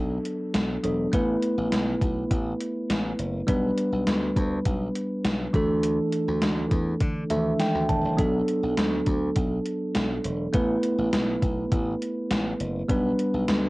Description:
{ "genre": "1980s-style pop", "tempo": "102 BPM", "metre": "4/4", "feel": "straight", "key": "unclear", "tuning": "A4 = 440 Hz", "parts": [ { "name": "bell-like tine electric piano", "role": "accompaniment", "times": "0.0-13.7 s", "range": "Eb3 to A5", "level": "-25 LUFS", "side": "equal", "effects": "cassette tape, plate reverb" }, { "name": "slap bass", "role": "bass", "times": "0.0-13.7 s", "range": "E1 to D3", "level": "-30 LUFS", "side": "equal", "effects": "none" }, { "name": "gated 80s digital drum machine", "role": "drums", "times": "0.3-13.6 s", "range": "hi-hat, kick drum, snare drum", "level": "-26 LUFS", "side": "equal", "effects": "gated reverb, gated reverb snare, overdrive, cassette tape" } ], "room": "moderate small room reverb, RT60 0.5 s", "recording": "home recording on cassette", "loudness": "-23 LUFS", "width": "side -21 dB against mid", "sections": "0.0-13.7 A section", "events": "tine electric piano fill 7.0-8.2", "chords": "0.0 Bm7; 1.1 Asus2; 3.5 G/B; 5.5 Dsus2; 8.2 Bm7; 10.5 Asus2; 12.9 G/B" }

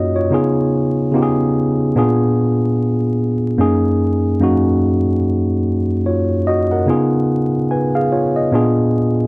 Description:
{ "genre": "hip hop", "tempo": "73 BPM", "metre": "4/4", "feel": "swing 60% on 16ths", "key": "F# major", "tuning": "A4 = 440 Hz", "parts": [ { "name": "tine electric piano", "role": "solo", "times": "0.0-9.3 s", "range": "F#2 to G#5", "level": "-14 LUFS", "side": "equal", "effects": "cassette tape, low-pass filter" } ], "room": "moderate small room reverb, RT60 0.5 s", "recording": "vinyl crackle", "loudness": "-14 LUFS", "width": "side -26 dB against mid", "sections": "0.0-9.3 A section", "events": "none", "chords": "0.3 C#9; 1.9 A#7b9; 3.6 F#69; 6.9 C#9; 8.5 A#7b9" }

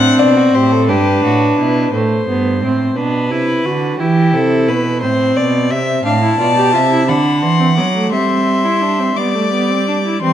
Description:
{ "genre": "classical, baroque-style fugue for string quartet", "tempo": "58 BPM (dotted quarters)", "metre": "6/8", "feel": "straight", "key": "unclear", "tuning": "A4 = 440 Hz", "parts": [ { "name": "warm violin", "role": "melody", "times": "0.0-1.9, 6.0-10.3 s", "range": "B4 to D6", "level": "-17 LUFS", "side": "left 6 dB", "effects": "none" }, { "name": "rich violin", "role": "second line", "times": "0.0-10.3 s", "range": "C4 to F#5", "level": "-20 LUFS", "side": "left 4 dB", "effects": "none" }, { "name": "warm viola", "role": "accompaniment", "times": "0.0-10.3 s", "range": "G3 to G4", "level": "-16 LUFS", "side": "right 2 dB", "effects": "none" }, { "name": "warm cello", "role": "bass", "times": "0.0-10.3 s", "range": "G2 to G3", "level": "-17 LUFS", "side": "right 3 dB", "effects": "none" } ], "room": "moderate recital hall reverb, RT60 1.4 s", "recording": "dark, warm production", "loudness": "-12 LUFS", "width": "side -10 dB against mid", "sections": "0.0-1.9 A section; 1.9-10.2 B section", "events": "none", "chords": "0.0 D7/A; 0.9 G; 1.9 Am9; 3.0 Bm; 4.0 Em; 5.0 Am; 6.0 Dm7/A; 7.1 D7; 8.1 Gsus4; 9.2 G" }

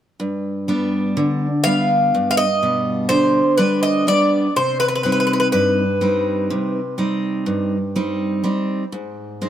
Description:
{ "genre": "greek folk, Greek bouzouki band", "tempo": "124 BPM (eighths)", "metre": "9/8", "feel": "straight", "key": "G phrygian dominant", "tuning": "A4 = 440 Hz", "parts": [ { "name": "picked steel-string acoustic guitar", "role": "accompaniment", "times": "0.2-9.5 s", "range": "G2 to Eb4", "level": "-19 LUFS", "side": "equal", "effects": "none" }, { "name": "Greek bouzouki", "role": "melody", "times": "1.6-6.9 s", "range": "B4 to F5", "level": "-18 LUFS", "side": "equal", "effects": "none" } ], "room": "moderate plate reverb, RT60 2.8 s", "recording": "none", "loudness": "-16 LUFS", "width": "side -10 dB against mid", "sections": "0.2-9.5 A section", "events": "none", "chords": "0.2 G; 4.6 Cm; 8.9 Ab" }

